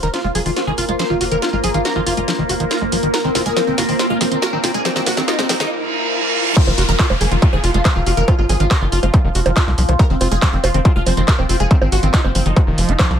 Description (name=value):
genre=psychedelic trance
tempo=140 BPM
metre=4/4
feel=straight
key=F phrygian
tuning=A4 = 439 Hz
part: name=supersaw stab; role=melody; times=0.0-13.2 s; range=C4 to C5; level=-23 LUFS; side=right 1 dB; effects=phaser, sidechain pumping, ping-pong delay
part: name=overtone-sweeping drone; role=sustained chords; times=0.0-13.2 s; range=F3 to Bb4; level=-23 LUFS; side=left 2 dB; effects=chorus, built-in reverb, phaser, sidechain pumping
part: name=screaming distorted acid line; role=riff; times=0.0-13.2 s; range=Eb3 to Gb4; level=-24 LUFS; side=moving between left 4 dB and right 3 dB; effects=distortion, chorus, auto-pan, sidechain pumping, ping-pong delay
part: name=tight sequencer bass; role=bass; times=0.0-13.2 s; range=Eb1 to C2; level=-19 LUFS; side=equal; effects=none
part: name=techno drum kit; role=drums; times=0.0-13.2 s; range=bongos, crash cymbal, handclaps, hi-hat, snare drum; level=-22 LUFS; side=right 1 dB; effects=overdrive, high-pass filter on perc, high-pass filter on snare, high-pass filter on hats, high-pass filter on cymbals
part: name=riser, reverse cymbal and downlifter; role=sound effects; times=2.6-10.0 s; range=none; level=-25 LUFS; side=right 2 dB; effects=none
part: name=ethereal airy pad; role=texture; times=0.0-5.7 s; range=F4 to C6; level=-30 LUFS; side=equal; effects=none
part: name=electronic kick drum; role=drums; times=6.6-13.1 s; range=none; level=-14 LUFS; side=equal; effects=distortion, overdrive
room=light reverb, digital ambience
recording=high-pass filter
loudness=-14 LUFS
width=side -9 dB against mid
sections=0.0-6.6 A section; 6.6-13.2 B section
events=build-up 0.0-6.6; drum fill 0.0-5.7; filter sweep on acid bass 0.0-6.6; filter sweep 0.0-6.6; reverse cymbal 5.7-6.6; drop 6.6-13.2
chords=0.0 F5